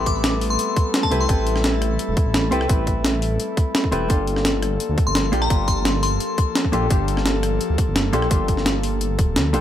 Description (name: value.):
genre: liquid drum and bass.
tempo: 171 BPM.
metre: 4/4.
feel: straight.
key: unclear.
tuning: A4 = 440 Hz.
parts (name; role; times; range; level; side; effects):
hollow-body jazz guitar; accompaniment; 0.0-9.6 s; Bb3 to B4; -25 LUFS; equal; dub echo.
airy breathy pad; sustained chords; 0.0-9.6 s; F3 to A4; -27 LUFS; left 3 dB; chorus, sidechain pumping.
dark detuned saw bass; bass; 0.0-9.6 s; D1 to D2; -23 LUFS; equal; none.
glassy synth bell; melody; 0.1-1.5, 5.1-6.5 s; A5 to D6; -26 LUFS; left 4 dB; chorus, digital delay.
breakbeat sampler-style drum kit; drums; 0.1-9.6 s; hi-hat, rim click, snare drum; -23 LUFS; equal; none.
electronic kick drum; drums; 0.1-9.3 s; none; -20 LUFS; equal; overdrive.
room: light reverb.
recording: none.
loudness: -18 LUFS.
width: side -11 dB against mid.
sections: 0.0-9.6 A section.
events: kick drops out 9.4.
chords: 0.0 Am9; 4.1 Gm9.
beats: 0.24 0.59 0.94 | 1.29 1.64 1.99 2.35 | 2.70 3.05 3.40 3.75 | 4.10 4.45 4.80 5.15 | 5.50 5.85 6.20 6.55 | 6.91 7.26 7.61 7.96 | 8.31 8.66 9.01 9.36.